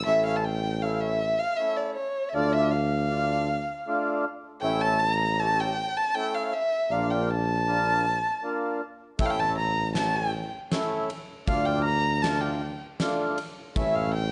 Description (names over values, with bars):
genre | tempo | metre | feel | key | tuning
klezmer | 79 BPM | 3/4 | straight | A phrygian dominant | A4 = 437 Hz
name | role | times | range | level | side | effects
dark violin | melody | 0.0-14.3 s | C#5 to Bb5 | -29 LUFS | equal | none
warm tuba | bass | 0.0-14.3 s | A1 to D2 | -32 LUFS | equal | none
mellow accordion | accompaniment | 0.1-14.1 s | A3 to G4 | -33 LUFS | equal | none
huge arena drum kit | drums | 9.2-13.9 s | kick drum, ride cymbal, snare drum | -35 LUFS | equal | none
room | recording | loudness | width
moderate recital hall reverb, RT60 1.5 s | nothing above 10.3 kHz | -27 LUFS | mono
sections
0.1-14.3 A section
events
none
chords
0.1 A; 2.3 Dm; 4.6 A; 6.9 Bb; 9.2 A; 11.5 Dm; 13.8 A